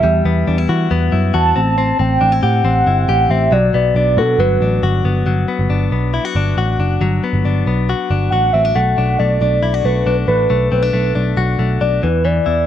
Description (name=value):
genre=jangly indie pop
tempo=138 BPM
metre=4/4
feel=straight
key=unclear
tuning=A4 = 440 Hz
part: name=warbly nostalgic lead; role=melody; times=0.0-4.8, 8.3-12.7 s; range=A4 to A5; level=-16 LUFS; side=right 1 dB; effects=chorus
part: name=direct-recorded clean electric guitar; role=arpeggios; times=0.0-12.7 s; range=E3 to G4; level=-19 LUFS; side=left 6 dB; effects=none
part: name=vintage muted picked electric bass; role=bass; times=0.0-12.6 s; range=F#1 to E3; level=-16 LUFS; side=right 1 dB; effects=none
room=light reverb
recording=none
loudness=-13 LUFS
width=side -10 dB against mid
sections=0.0-5.3 A section; 5.3-8.8 B section; 8.8-12.7 C section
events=none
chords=0.0 Emadd9; 1.6 Am7; 3.5 Bm; 4.4 Gmaj7; 8.8 Bm7; 12.0 E5